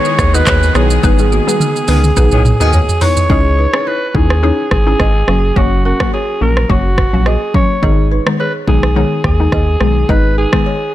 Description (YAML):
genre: afrobeats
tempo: 106 BPM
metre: 4/4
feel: swing 55% on 16ths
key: G# minor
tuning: A4 = 440 Hz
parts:
  - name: growling alto saxophone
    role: melody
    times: 0.0-10.9 s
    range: F#4 to C#5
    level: -18 LUFS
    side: equal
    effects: ping-pong delay
  - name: hollow square pluck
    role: accompaniment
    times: 0.0-10.7 s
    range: D#3 to B4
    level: -18 LUFS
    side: left 3 dB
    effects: chorus
  - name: lush unison pad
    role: sustained chords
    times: 0.0-3.3 s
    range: D#3 to G#4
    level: -22 LUFS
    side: right 1 dB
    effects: chorus
  - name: afro-pop drum kit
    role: drums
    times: 0.0-10.6 s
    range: handclaps, hi-hat, kick drum, rim click, shaker, toms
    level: -15 LUFS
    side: equal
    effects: none
  - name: balafon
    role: riff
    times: 0.1-10.8 s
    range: A#3 to D#5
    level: -23 LUFS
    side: right 3 dB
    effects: ping-pong delay
  - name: round analog bass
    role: bass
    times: 0.2-10.5 s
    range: F#1 to D#2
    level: -14 LUFS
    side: equal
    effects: none
  - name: warm horn section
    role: second line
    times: 1.9-2.8 s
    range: D#3 to G#4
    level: -22 LUFS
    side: left 2 dB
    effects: ping-pong delay
room: digital ambience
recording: none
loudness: -10 LUFS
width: side -14 dB against mid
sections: 0.0-3.3 A section; 3.3-10.9 B section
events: drum fill 1.0-3.3; band accent 1.0-3.3; hi-hats muted 3.3-10.9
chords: 0.0 G#m; 3.3 C#madd9; 5.3 F#; 7.8 G#m